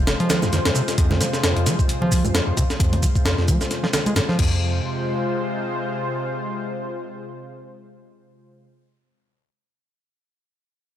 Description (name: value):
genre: breakbeat, breaks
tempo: 132 BPM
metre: 4/4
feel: swing 56% on 16ths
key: F minor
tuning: A4 = 440 Hz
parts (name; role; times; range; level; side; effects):
- lush unison pad; sustained chords; 0.0-8.7 s; C3 to C5; -26 LUFS; left 1 dB; chorus, sidechain pumping
- breakbeat sampler-style drum kit; drums; 0.1-4.5 s; crash cymbal, hi-hat, kick drum, snare drum; -21 LUFS; equal; studio reverb
- shaker; drums; 0.1-4.3 s; none; -31 LUFS; right 4 dB; studio reverb
- overdriven acid bass; riff; 0.2-4.8 s; F2 to Ab3; -22 LUFS; equal; ping-pong delay
- congas; percussion; 0.3-4.3 s; none; -30 LUFS; right 4 dB; none
room: light reverb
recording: none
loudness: -19 LUFS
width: side -11 dB against mid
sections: 0.0-4.6 A section; 4.6-8.3 B section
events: none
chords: 0.0 Fm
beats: 0.07 0.52 | 0.98 1.43 1.89 2.34 | 2.80 3.25 3.71 4.16 | 4.61 5.07 5.52 5.98 | 6.43 6.89 7.34 7.80